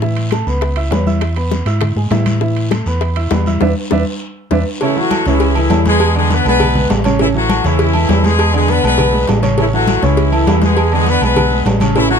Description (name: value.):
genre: latin, salsa.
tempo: 201 BPM.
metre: 4/4.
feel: straight.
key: A major.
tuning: A4 = 441 Hz.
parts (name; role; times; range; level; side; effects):
warm grand piano; accompaniment; 0.0-12.2 s; C#3 to E6; -19 LUFS; right 2 dB; none.
hollow-body short-scale fingered electric bass; bass; 0.0-12.2 s; A1 to A2; -16 LUFS; equal; none.
bongos and cowbell; percussion; 0.0-12.1 s; none; -22 LUFS; left 2 dB; none.
congas; percussion; 0.0-12.2 s; none; -20 LUFS; left 3 dB; none.
guiro; percussion; 0.0-12.2 s; none; -31 LUFS; left 3 dB; none.
timbales and agogo bells; percussion; 0.2-12.1 s; none; -23 LUFS; right 4 dB; none.
bright horn section; melody; 4.8-12.2 s; E3 to B4; -16 LUFS; left 3 dB; none.
room: light reverb.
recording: dark, warm production.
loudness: -12 LUFS.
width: side -6 dB against mid.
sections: 0.0-4.8 A section; 4.8-12.2 B section.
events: band accent 3.6-4.8; drum fill 4.4-4.8.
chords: 0.0 Aadd9; 1.2 E; 2.4 Asus2; 3.6 E5; 4.8 A; 6.0 E7; 7.2 A; 8.4 E7; 9.6 Aadd9; 10.8 E7.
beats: | 0.02 0.32 0.62 0.92 | 1.22 1.52 1.82 2.12 | 2.42 2.72 3.02 3.32 | 3.62 3.92 4.21 4.51 | 4.81 5.11 5.41 5.71 | 6.01 6.30 6.60 6.90 | 7.20 7.50 7.79 8.09 | 8.39 8.69 8.99 9.28 | 9.58 9.88 10.18 10.47 | 10.77 11.07 11.37 11.66 | 11.96.